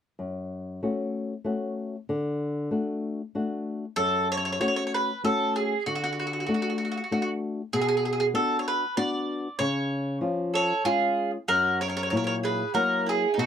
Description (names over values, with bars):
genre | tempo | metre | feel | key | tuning
italian folk, Italian serenade | 96 BPM | 3/4 | swing 53% on 8ths | F# harmonic minor | A4 = 439 Hz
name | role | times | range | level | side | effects
flamenco guitar | accompaniment | 0.2-13.5 s | F#2 to F#4 | -28 LUFS | left 2 dB | none
mandolin | melody | 4.0-13.5 s | F#4 to D5 | -26 LUFS | right 1 dB | none
mandolin | second line | 10.5-13.5 s | D#4 to A#4 | -30 LUFS | right 5 dB | none
room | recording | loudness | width
light reverb | dry, close 1970s-style studio recording | -25 LUFS | side -8 dB against mid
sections
0.2-4.0 A section; 4.0-13.5 B section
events
none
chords
0.2 F#m; 2.1 D; 4.0 F#m; 5.8 D; 7.7 Bm; 9.6 C#; 11.5 F#7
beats
| 0.19 0.82 1.45 | 2.07 2.69 3.32 | 3.95 4.58 5.22 | 5.84 6.47 7.09 | 7.71 8.34 8.96 | 9.59 10.22 10.85 | 11.48 12.12 12.75 | 13.38